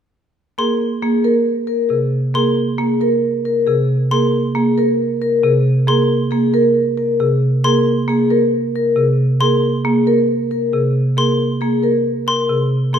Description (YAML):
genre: classical, minimalist pattern music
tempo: 136 BPM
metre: 4/4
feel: straight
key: unclear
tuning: A4 = 440 Hz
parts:
  - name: vibraphone with medium mallets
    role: melody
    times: 0.6-13.0 s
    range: Ab4 to Bb4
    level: -19 LUFS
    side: left 9 dB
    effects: none
  - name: marimba with medium mallets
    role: accompaniment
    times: 0.6-13.0 s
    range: C3 to Bb3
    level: -17 LUFS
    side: right 2 dB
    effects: none
  - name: marimba with medium mallets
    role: arpeggios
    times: 0.6-13.0 s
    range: Ab4 to Bb4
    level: -22 LUFS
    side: right 10 dB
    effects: none
  - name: xylophone with plastic mallets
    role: arpeggios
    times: 0.6-13.0 s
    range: C6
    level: -22 LUFS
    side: left 2 dB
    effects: none
room: wet recital hall reverb, RT60 1.4 s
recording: none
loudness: -14 LUFS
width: side -8 dB against mid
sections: 0.4-13.0 A section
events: none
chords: 0.4 Bbsus2